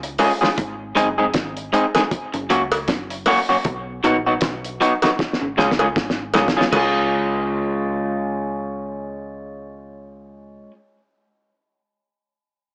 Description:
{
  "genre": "roots reggae",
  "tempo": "78 BPM",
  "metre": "4/4",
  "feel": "swing 58% on 16ths",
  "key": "Db major",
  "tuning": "A4 = 442 Hz",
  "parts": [
    { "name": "deep dub fingered electric bass", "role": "bass", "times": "0.0-10.7 s", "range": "Gb1 to Db2", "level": "-37 LUFS", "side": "equal", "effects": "none" },
    { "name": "cloth-damped thuddy drum kit", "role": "drums", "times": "0.0-6.9 s", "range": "crash cymbal, hi-hat, kick drum, snare drum", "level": "-26 LUFS", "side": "equal", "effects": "none" },
    { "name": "electric guitar through a small old amp", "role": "accompaniment", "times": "0.2-10.8 s", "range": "Gb3 to Ab4", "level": "-22 LUFS", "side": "equal", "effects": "tape echo, plate reverb" },
    { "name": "cowbell", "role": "percussion", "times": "0.2-7.1 s", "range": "none", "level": "-25 LUFS", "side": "equal", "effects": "none" },
    { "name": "electric guitar through a small old amp", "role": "arpeggios", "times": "0.6-7.0 s", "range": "Ab2 to Eb3", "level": "-30 LUFS", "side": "equal", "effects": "tremolo" }
  ],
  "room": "moderate club reverb, RT60 0.8 s",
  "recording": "small speaker sound",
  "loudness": "-20 LUFS",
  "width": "mono",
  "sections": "0.0-6.7 A section; 6.7-9.8 B section",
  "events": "drum fill 5.2-6.7",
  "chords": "0.0 Db; 0.6 Ab; 2.1 Gb; 3.7 Cb; 5.2 Db",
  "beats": "| 0.58 1.34 2.11 2.88 | 3.65 4.42 5.19 5.96 | 6.73 7.50 8.26 9.03"
}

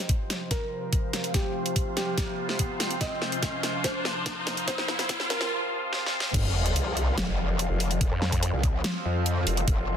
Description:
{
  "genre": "heavy wobble dubstep",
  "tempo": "144 BPM",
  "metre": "4/4",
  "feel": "half-time",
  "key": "unclear",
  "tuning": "A4 = 441 Hz",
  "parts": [
    { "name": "felt-muted upright piano", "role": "melody", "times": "0.0-5.5 s", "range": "G4 to Eb5", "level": "-35 LUFS", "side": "right 2 dB", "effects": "low-pass filter, ping-pong delay" },
    { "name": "evolving wavetable pad", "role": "sustained chords", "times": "0.0-10.0 s", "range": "C3 to C5", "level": "-32 LUFS", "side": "equal", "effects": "phaser, built-in reverb, sidechain pumping" },
    { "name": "riser and sub drop", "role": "sound effects", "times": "1.0-8.0 s", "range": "none", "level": "-34 LUFS", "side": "equal", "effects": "none" },
    { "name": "dubstep drum kit", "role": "drums", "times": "0.1-9.8 s", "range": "crash cymbal, hi-hat, snare drum", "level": "-30 LUFS", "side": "equal", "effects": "high-pass filter on snare, high-pass filter on hats, high-pass filter on cymbals" },
    { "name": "electronic kick drum", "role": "drums", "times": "0.1-9.8 s", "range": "none", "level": "-27 LUFS", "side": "equal", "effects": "none" },
    { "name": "growl bass", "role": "bass", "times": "6.3-10.0 s", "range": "F1 to F2", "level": "-27 LUFS", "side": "equal", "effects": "chorus, overdrive" },
    { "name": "vowel-sweep wobble bass", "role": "bass", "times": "8.1-8.5 s", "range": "F2", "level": "-26 LUFS", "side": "equal", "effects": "chorus, overdrive" }
  ],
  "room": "light reverb, digital ambience",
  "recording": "dense, heavily limited modern master, high-pass filter",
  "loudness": "-25 LUFS",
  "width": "side -8 dB against mid",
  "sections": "0.0-6.3 A section; 6.3-10.0 B section",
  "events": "build-up 0.0-6.3; drum fill 0.0-5.5, 5.9-6.3; filter sweep on felt piano 0.0-6.3; filter sweep 0.0-6.3; riser 1.0-5.5; drop 6.3-10.0; impact 6.3-8.0",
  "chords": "0.0 F5",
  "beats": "0.09 0.51 0.93 | 1.34 1.76 2.18 2.59 | 3.01 3.43 3.84 4.26 | 4.68 5.09 5.51 5.93 | 6.34 6.76 7.18 7.59 | 8.01 8.43 8.84 9.26 | 9.68"
}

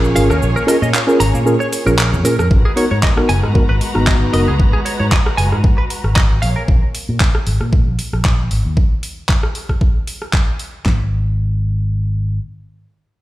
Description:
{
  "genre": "nu-disco, nu disco",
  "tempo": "115 BPM",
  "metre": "4/4",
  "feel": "swing 54% on 16ths",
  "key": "unclear",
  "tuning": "A4 = 439 Hz",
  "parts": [
    { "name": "mellow tine electric piano", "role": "accompaniment", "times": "0.0-4.5 s", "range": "B3 to A#5", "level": "-17 LUFS", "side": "equal", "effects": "sidechain pumping, tape echo" },
    { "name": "muted studio string section", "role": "sustained chords", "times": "0.0-6.7 s", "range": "G#3 to A#5", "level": "-24 LUFS", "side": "equal", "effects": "sidechain pumping, low-pass filter" },
    { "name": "fingered electric bass with an envelope filter", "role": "bass", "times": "0.0-12.4 s", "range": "F#1 to A#2", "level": "-17 LUFS", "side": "equal", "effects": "none" },
    { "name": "pop drum kit", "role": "drums", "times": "0.0-10.7 s", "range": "cabasa, handclaps, hi-hat, rim click", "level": "-22 LUFS", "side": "equal", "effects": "overdrive" },
    { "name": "direct-recorded clean electric guitar", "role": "riff", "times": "0.2-6.6 s", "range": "G#3 to A#5", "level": "-23 LUFS", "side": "right 2 dB", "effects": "analog chorus, tape echo" },
    { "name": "pop drum kit", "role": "drums", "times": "2.5-11.0 s", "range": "handclaps, kick drum, snare drum", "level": "-14 LUFS", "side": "equal", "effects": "overdrive" }
  ],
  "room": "light reverb, digital ambience",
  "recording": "played on a big sound system in a bare room, stone room reverb",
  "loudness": "-13 LUFS",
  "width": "side -16 dB against mid",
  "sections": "0.0-2.5 A section; 2.5-10.9 B section; 10.9-13.2 C section",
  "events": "drop 0.0-2.5; kick drops out 0.4-2.5",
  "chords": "0.0 A#m7; 2.5 G#m9; 6.4 A#7(no3); 10.9 N.C.",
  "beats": "| 0.42 0.94 1.46 1.99 | 2.51 3.03 3.55 4.07 | 4.59 5.12 5.64 6.16 | 6.68 7.20 7.72 8.25 | 8.77 9.29 9.81 10.33 | 10.86 11.38 11.90"
}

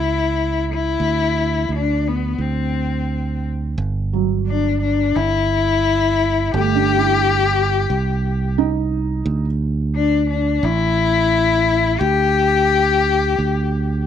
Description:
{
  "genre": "acoustic folk-pop ballad",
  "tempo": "87 BPM",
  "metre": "4/4",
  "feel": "straight",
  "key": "unclear",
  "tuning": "A4 = 441 Hz",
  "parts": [
    { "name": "rich cello", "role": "melody", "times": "0.0-14.1 s", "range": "B3 to G4", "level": "-18 LUFS", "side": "left 5 dB", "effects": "none" },
    { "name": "fingered electric bass", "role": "bass", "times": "0.0-14.1 s", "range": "G1 to D2", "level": "-21 LUFS", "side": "right 2 dB", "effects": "none" },
    { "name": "felt-muted upright piano", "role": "arpeggios", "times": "4.1-9.4 s", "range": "F#3 to E4", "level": "-22 LUFS", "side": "right 13 dB", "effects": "none" }
  ],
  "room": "light reverb, studio reverb",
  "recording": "1960s-style stereo",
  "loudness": "-16 LUFS",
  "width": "side -9 dB against mid",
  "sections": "0.0-3.8 A section; 3.8-14.1 B section",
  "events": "none",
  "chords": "0.0 C#m; 1.0 Csus2/D; 3.8 Dadd11/G; 5.2 Em/G; 6.5 G5; 7.9 Cm; 9.3 N.C.; 10.6 A5; 12.0 G5/D",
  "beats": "0.31 | 1.00 1.69 2.38 3.08 | 3.78 4.47 5.16 5.85 | 6.54 7.22 7.90 8.57 | 9.26 9.94 10.63 11.31 | 12.00 12.69 13.38"
}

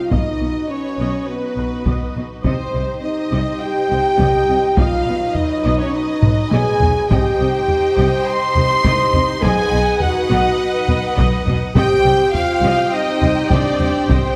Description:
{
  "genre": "cinematic, epic orchestral film score",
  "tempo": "103 BPM",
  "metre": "4/4",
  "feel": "straight",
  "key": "C minor",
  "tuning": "A4 = 440 Hz",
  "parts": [
    { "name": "clear symphonic violin section", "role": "melody", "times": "0.0-14.4 s", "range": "B4 to C6", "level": "-31 LUFS", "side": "equal", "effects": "none" },
    { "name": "warm symphonic violin section", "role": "second line", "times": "0.0-14.4 s", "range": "B4 to C6", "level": "-29 LUFS", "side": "equal", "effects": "none" },
    { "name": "dark symphonic viola section", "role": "accompaniment", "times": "0.0-14.4 s", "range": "B4 to G5", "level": "-32 LUFS", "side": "equal", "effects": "none" },
    { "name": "dark French horn section", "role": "sustained chords", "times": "0.0-14.4 s", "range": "B3 to C5", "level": "-22 LUFS", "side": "equal", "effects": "none" },
    { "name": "rich studio string section", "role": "sustained chords", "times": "0.0-14.4 s", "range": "F#3 to G5", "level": "-28 LUFS", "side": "equal", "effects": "none" },
    { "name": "dark trumpet section", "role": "stabs", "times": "0.0-14.4 s", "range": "B4 to C6", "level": "-26 LUFS", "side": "equal", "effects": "none" },
    { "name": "rich studio double bass section", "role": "bass", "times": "0.1-14.2 s", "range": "B1 to C2", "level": "-26 LUFS", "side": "equal", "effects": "none" },
    { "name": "warm symphonic cello section", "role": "bass", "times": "0.1-14.2 s", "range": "B2 to C3", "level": "-26 LUFS", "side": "equal", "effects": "none" },
    { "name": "taiko ensemble", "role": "drums", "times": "0.1-14.4 s", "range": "none", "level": "-22 LUFS", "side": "equal", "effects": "none" }
  ],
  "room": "wet scoring stage reverb, RT60 1.4 s",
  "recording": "none",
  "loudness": "-17 LUFS",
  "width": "mono",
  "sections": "0.0-14.4 A section",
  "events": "drum fill 6.2-7.1",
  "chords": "0.1 B; 2.4 Cm; 4.8 B; 7.1 Cm; 9.4 B; 11.8 Cm",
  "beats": "| 0.12 0.70 1.28 1.86 | 2.44 3.03 3.61 4.19 | 4.77 5.35 5.94 6.52 | 7.10 7.68 8.27 8.85 | 9.43 10.01 10.60 11.18 | 11.76 12.35 12.93 13.51 | 14.10"
}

